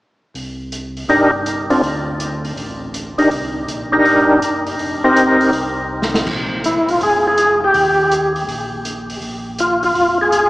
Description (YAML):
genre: soul jazz organ trio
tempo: 162 BPM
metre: 4/4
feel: swing 66% on 8ths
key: Bb mixolydian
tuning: A4 = 440 Hz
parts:
  - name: mellow tonewheel organ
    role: bass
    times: 0.3-10.5 s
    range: F1 to Eb2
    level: -29 LUFS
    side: equal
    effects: slow rotary speaker
  - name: vintage drum kit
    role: drums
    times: 0.4-10.4 s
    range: crash cymbal, hi-hat, kick drum, snare drum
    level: -26 LUFS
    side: right 1 dB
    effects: none
  - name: percussive tonewheel organ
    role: melody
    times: 1.1-10.5 s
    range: C4 to Bb4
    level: -14 LUFS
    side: equal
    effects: slow rotary speaker, overdrive, chorus vibrato
room: wet cathedral reverb, RT60 5.0 s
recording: recorded in a church or concert hall, small speaker sound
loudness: -14 LUFS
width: side -19 dB against mid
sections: 0.3-6.3 A section; 6.3-10.5 B section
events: drum fill 5.9-6.3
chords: 0.3 Cm9; 1.8 D5; 3.3 Cm9; 4.8 F9sus4; 6.3 Bb5; 7.7 Eb; 9.2 Bb5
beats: | 0.35 0.72 1.09 1.46 | 1.83 2.20 2.57 2.94 | 3.31 3.68 4.05 4.42 | 4.79 5.16 5.53 5.90 | 6.27 6.64 7.01 7.38 | 7.74 8.11 8.48 8.85 | 9.22 9.59 9.96 10.32